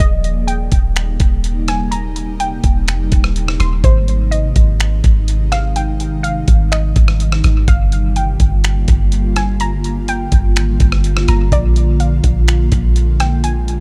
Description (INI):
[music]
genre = hip hop, atmospheric cloud-rap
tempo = 125 BPM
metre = 4/4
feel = half-time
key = Eb major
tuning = A4 = 440 Hz
[part]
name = warbly dusty pluck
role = melody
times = 0.0-13.8 s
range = C5 to C6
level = -27 LUFS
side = equal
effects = chorus, dub echo
[part]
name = ethereal airy pad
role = sustained chords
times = 0.0-13.8 s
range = C3 to F4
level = -25 LUFS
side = equal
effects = ensemble chorus, built-in reverb, sidechain pumping
[part]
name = soft 808-style bass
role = bass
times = 0.0-13.8 s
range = Eb1 to Bb1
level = -17 LUFS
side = equal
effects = none
[part]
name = dusty soul sampler-style drum kit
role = drums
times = 0.0-13.8 s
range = finger snaps, hi-hat, kick drum, rim click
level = -17 LUFS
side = equal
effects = none
[sound]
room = little or no reverb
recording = echo-heavy mix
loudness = -15 LUFS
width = mono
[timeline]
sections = 0.0-13.8 A section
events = none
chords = 0.0 Eb6; 3.8 Ab; 7.7 Gm7; 11.5 Bb7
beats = | 0.00 0.48 0.96 1.44 | 1.92 2.40 2.88 3.36 | 3.84 4.32 4.80 5.28 | 5.76 6.24 6.72 7.20 | 7.68 8.16 8.64 9.12 | 9.60 10.08 10.56 11.04 | 11.52 12.00 12.48 12.96 | 13.44